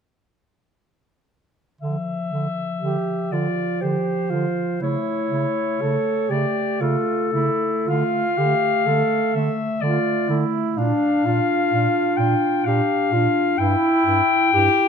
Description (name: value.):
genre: classical, lyrical piece for single-reed quartet.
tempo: 54-65 BPM.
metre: 3/4.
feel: rubato.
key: D minor.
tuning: A4 = 441 Hz.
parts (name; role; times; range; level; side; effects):
mellow clarinet; melody; 1.8-14.9 s; A4 to G5; -22 LUFS; left 8 dB; none.
dark clarinet; accompaniment; 1.8-14.9 s; F3 to E4; -26 LUFS; left 4 dB; none.
mellow bass clarinet; bass; 1.8-14.7 s; G2 to D3; -26 LUFS; right 2 dB; none.
clear alto saxophone; second line; 2.8-14.9 s; D4 to A4; -24 LUFS; right 9 dB; none.
room: moderate recital hall reverb, RT60 1.4 s.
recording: none.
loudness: -18 LUFS.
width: side -7 dB against mid.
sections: 1.8-14.9 A section.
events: none.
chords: 1.8 Dm; 4.8 A/C#; 7.9 Dm; 10.8 Bb; 13.6 Em/G.